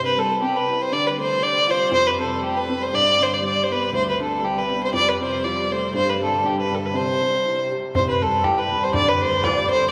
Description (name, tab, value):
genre	celtic folk, Celtic polka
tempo	120 BPM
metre	2/4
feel	swing 55% on 8ths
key	unclear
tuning	A4 = 439 Hz
part	dark fiddle	melody	0.0-9.9 s	G4 to D5	-22 LUFS	equal	none
part	dark upright piano	accompaniment	0.0-9.9 s	D2 to A4	-31 LUFS	equal	none
part	dark studio string section	drone	0.0-9.9 s	C3 to G3	-34 LUFS	equal	none
part	mellow accordion	second line	8.0-9.9 s	G4 to D5	-28 LUFS	equal	none
part	bodhran	percussion	8.0-9.6 s	none	-30 LUFS	equal	none
room	wet church reverb, RT60 2.7 s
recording	recorded in a church or concert hall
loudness	-21 LUFS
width	mono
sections	0.0-7.9 A section; 7.9-9.9 A section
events	none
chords	0.0 C; 0.9 Dm; 1.9 Fadd9; 2.9 G; 4.9 F; 5.9 Gsus4; 6.9 C; 8.9 Dm